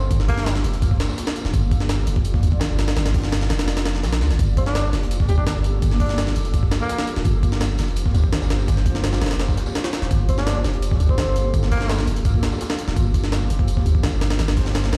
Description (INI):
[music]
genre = drum and bass, jungle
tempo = 168 BPM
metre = 4/4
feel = straight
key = G minor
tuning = A4 = 445 Hz
[part]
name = breathy tenor saxophone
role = melody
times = 0.0-0.6, 4.6-7.1, 10.3-12.0 s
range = Bb3 to G4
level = -32 LUFS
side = equal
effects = dub echo
[part]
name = granular cloud pad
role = sustained chords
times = 0.0-15.0 s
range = Bb3 to D5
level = -33 LUFS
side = equal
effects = built-in reverb
[part]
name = long sustained 808-style bass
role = bass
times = 0.0-15.0 s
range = D1 to D2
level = -24 LUFS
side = equal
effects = none
[part]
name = downlifter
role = sound effects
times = 0.0-1.5 s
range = none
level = barely audible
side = none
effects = none
[part]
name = crunchy breakbeat drum kit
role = drums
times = 0.1-15.0 s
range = hi-hat, snare drum, tambourine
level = -40 LUFS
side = equal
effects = high-pass filter on hats, high-pass filter on snare, high-pass filter on perc, high-pass filter on room
[part]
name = jungle sampler-style drum kit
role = drums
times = 0.1-15.0 s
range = hi-hat, kick drum, snare drum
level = -24 LUFS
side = equal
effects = overdrive
[sound]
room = small room ambience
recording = played on a big sound system in a bare room, stone room reverb, vinyl crackle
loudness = -21 LUFS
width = mono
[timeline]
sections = 0.0-15.0 A section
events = none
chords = 0.0 Gm9